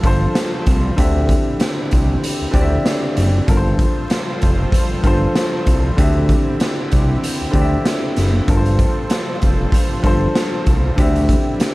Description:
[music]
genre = hip hop, boom-bap hip-hop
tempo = 96 BPM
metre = 4/4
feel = swing 56% on 16ths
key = unclear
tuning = A4 = 440 Hz
[part]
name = warm upright piano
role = accompaniment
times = 0.0-11.7 s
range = G2 to E5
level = -21 LUFS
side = equal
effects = cassette tape, high-pass filter, low-pass filter
[part]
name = warm analog pad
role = sustained chords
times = 0.0-11.7 s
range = D3 to C5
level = -27 LUFS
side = equal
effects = chorus, high-pass filter, low-pass filter
[part]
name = fat analog bass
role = bass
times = 0.0-11.4 s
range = F1 to D2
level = -17 LUFS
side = equal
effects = none
[part]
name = raw garage drum kit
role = drums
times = 0.0-11.7 s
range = hi-hat, kick drum, snare drum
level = -17 LUFS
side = equal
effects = none
[sound]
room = little or no reverb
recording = dark, warm production, vinyl crackle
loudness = -14 LUFS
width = side -20 dB against mid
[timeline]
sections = 0.0-11.7 A section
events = none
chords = 0.0 G9sus4; 1.0 D9sus4; 3.5 G9sus4; 6.0 D9sus4; 8.5 G9sus4; 11.0 D9sus4

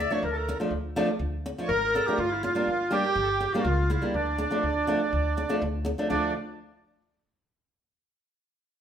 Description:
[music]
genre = klezmer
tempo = 122 BPM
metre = 4/4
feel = straight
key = D harmonic minor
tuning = A4 = 443 Hz
[part]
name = warm clarinet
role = melody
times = 0.0-6.3 s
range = D4 to D5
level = -29 LUFS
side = equal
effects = none
[part]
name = accordion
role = second line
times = 0.0-6.3 s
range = D4 to E5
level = -30 LUFS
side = right 3 dB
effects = none
[part]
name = flamenco guitar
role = accompaniment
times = 0.0-6.3 s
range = F3 to D4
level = -29 LUFS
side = equal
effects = none
[part]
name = upright bass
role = bass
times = 0.0-6.3 s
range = G1 to D2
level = -32 LUFS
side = equal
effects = none
[sound]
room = moderate stone room reverb, RT60 1.0 s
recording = band playing live in one room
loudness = -24 LUFS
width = side -8 dB against mid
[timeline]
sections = 0.0-6.1 A section; 6.1-8.1 B section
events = none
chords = 0.0 Dm; 2.2 Gm; 4.1 Dm

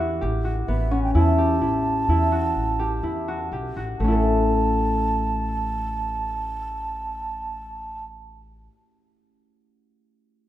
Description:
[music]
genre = contemporary instrumental, chamber music in an uneven meter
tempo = 127 BPM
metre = 7/4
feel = straight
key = A mixolydian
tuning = A4 = 440 Hz
[part]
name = concert harp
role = arpeggios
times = 0.0-8.8 s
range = A3 to A4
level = -24 LUFS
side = left 2 dB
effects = none
[part]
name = upright bass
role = bass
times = 0.0-8.7 s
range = A1 to E2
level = -25 LUFS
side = equal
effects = none
[part]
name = mellow baroque flute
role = melody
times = 0.7-8.0 s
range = E5 to A5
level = -27 LUFS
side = right 3 dB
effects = none
[sound]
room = light reverb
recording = minimal, uncompressed stereo recording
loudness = -21 LUFS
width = side -13 dB against mid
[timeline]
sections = 0.0-4.0 A section; 4.0-7.3 B section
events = slowing down 0.2-4.0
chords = 0.0 A7; 4.0 A

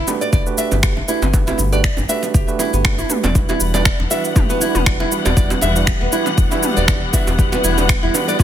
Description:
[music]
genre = afro house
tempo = 119 BPM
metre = 4/4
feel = swing 55% on 16ths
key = E minor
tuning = A4 = 441 Hz
[part]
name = nylon-string guitar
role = arpeggios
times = 0.0-8.4 s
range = B3 to E5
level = -22 LUFS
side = equal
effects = sidechain pumping, digital delay
[part]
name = round analog bass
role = bass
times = 0.0-8.4 s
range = E1 to G1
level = -20 LUFS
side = equal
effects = sidechain pumping
[part]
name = tine electric piano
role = stabs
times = 0.1-8.4 s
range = G3 to B4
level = -24 LUFS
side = right 7 dB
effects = overdrive, sidechain pumping, digital delay
[part]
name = deep house drum kit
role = drums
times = 0.1-8.4 s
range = finger snaps, shaker, toms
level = -22 LUFS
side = equal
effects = overdrive, studio reverb, soft clipping on snare
[part]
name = bongos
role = percussion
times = 0.1-8.4 s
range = none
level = -26 LUFS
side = right 4 dB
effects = none
[part]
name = electronic kick drum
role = drums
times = 0.3-8.4 s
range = none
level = -17 LUFS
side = equal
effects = overdrive, studio reverb
[part]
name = warm studio string section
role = sustained chords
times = 3.4-8.4 s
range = E3 to F#5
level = -23 LUFS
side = left 4 dB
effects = sidechain pumping
[sound]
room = studio ambience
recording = dense, heavily limited modern master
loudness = -14 LUFS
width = side -10 dB against mid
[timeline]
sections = 0.0-8.4 A section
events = drum fill 3.0-3.4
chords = 0.0 Gmaj7; 3.4 Em7

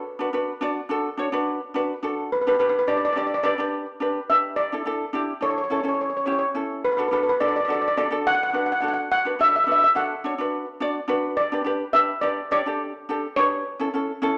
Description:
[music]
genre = calypso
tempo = 106 BPM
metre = 4/4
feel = straight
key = unclear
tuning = A4 = 440 Hz
[part]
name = steel pan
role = melody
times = 0.0-14.4 s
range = B4 to F#5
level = -24 LUFS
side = equal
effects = none
[part]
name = ukulele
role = accompaniment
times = 0.0-14.4 s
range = C#4 to D5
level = -28 LUFS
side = equal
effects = none
[sound]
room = moderate large studio reverb, RT60 1.1 s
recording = none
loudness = -24 LUFS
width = mono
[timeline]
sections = 0.0-14.4 A section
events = none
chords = 0.1 Bm7; 2.3 G; 4.6 Asus4; 5.7 A; 6.9 D; 9.1 Bm; 11.4 Gadd9; 13.6 A

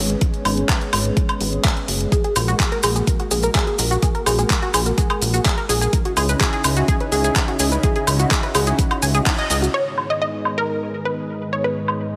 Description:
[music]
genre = progressive house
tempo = 126 BPM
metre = 4/4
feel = straight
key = G# minor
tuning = A4 = 440 Hz
[part]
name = lush unison pad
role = sustained chords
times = 0.0-12.2 s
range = G#2 to D#5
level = -28 LUFS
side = equal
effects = chorus, sidechain pumping
[part]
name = plucky analog bass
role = bass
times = 0.0-9.7 s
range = F#1 to C#2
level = -23 LUFS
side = equal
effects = sidechain pumping
[part]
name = pop drum kit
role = drums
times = 0.1-12.0 s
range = crash cymbal, handclaps, hi-hat, woodblock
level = -25 LUFS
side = equal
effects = overdrive, low-pass filter on hats, low-pass filter on cymbals, low-pass filter on perc, low-pass filter on snare, low-pass filter on room
[part]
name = electronic kick drum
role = drums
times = 0.2-9.4 s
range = none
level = -22 LUFS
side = equal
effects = none
[part]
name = tight sequenced synth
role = arpeggios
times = 2.1-9.7 s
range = D#4 to G#5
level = -26 LUFS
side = equal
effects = chorus, sidechain pumping, dub echo
[part]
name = maracas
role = percussion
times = 2.1-9.7 s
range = none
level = -29 LUFS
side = equal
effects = none
[part]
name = unison pluck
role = melody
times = 9.7-12.2 s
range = A#4 to D#5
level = -25 LUFS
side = equal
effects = vintage 12-bit sampler grit, sidechain pumping, dub echo
[sound]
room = light reverb, digital ambience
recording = none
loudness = -19 LUFS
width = mono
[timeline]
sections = 0.0-9.7 A section; 9.7-12.2 B section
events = filter sweep on analog synth pad 0.0-9.7; band accent 9.3; filter sweep on drum 9.7-12.2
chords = 0.0 G#m; 2.1 F#add9/A#; 5.9 C#madd9; 9.7 G#m

